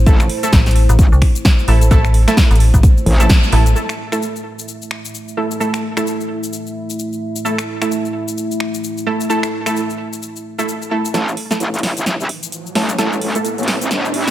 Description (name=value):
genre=bass house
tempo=130 BPM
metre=4/4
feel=swing 59% on 16ths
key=A minor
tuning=A4 = 440 Hz
part: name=dark analog pad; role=sustained chords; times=0.0-14.3 s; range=A3 to E5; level=-26 LUFS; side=equal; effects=wide subtle chorus, sidechain pumping
part: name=orchestra-hit-like synth stab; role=stabs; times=0.0-14.3 s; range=A3 to A4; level=-20 LUFS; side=right 2 dB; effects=built-in reverb, sidechain pumping, digital delay
part: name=metallic FM bass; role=bass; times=0.0-3.7 s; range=A1 to C2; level=-12 LUFS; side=equal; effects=tube saturation, sidechain pumping
part: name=metallic wobble bass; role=bass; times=0.1-3.3, 11.1-14.3 s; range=G1 to C2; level=-17 LUFS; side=equal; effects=chorus, tube saturation, sidechain pumping, high-pass filter
part: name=big-room dance drum kit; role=drums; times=0.1-14.3 s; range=finger snaps, hi-hat, shaker, snare drum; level=-22 LUFS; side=left 1 dB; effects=studio reverb
part: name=electronic kick drum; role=drums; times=0.1-3.4 s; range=none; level=-11 LUFS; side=equal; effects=studio reverb
part: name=riser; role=sound effects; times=12.0-14.3 s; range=none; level=-25 LUFS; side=right 1 dB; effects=none
room=light reverb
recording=none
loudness=-13 LUFS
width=side -13 dB against mid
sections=0.0-3.8 A section; 3.8-11.1 B section; 11.1-14.3 C section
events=drop 0.0-3.8; band accent 3.3; build-up 11.1-14.3; drum fill 11.1-14.3; filter sweep on analog synth pad 11.1-14.3; riser 12.0-14.3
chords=0.0 A5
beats=| 0.06 0.53 0.99 1.45 | 1.91 2.37 2.83 3.29 | 3.76 4.22 4.68 5.14 | 5.60 6.06 6.53 6.99 | 7.45 7.91 8.37 8.83 | 9.29 9.76 10.22 10.68 | 11.14 11.60 12.06 12.53 | 12.99 13.45 13.91